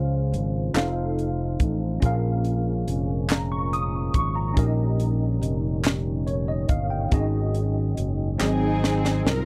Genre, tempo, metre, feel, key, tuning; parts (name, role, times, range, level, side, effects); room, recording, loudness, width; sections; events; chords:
slow gospel; 47 BPM (dotted quarters); 6/8; straight; A4 = 440 Hz
tine electric piano; accompaniment; 0.0-9.4 s; Ab2 to Eb6; -29 LUFS; equal; ensemble chorus
dark French horn section; sustained chords; 0.0-9.4 s; Eb3 to C5; -37 LUFS; equal
fingered electric bass; bass; 0.0-9.4 s; F1 to Db2; -28 LUFS; equal
crisp fusion drum kit; drums; 0.3-9.4 s; hi-hat, kick drum, snare drum; -26 LUFS; equal
group handclap; percussion; 0.7-8.8 s; -32 LUFS; equal
warm studio string section; melody; 8.4-9.4 s; C4 to Bb4; -28 LUFS; equal
little or no reverb; dry, close 1970s-style studio recording; -24 LUFS; mono
0.0-9.4 A section
drum fill 8.4-9.4
0.0 Dbmaj7; 0.8 F7; 2.0 Bbm7; 4.6 Eb7; 7.1 Ab7sus4; 8.4 Ab7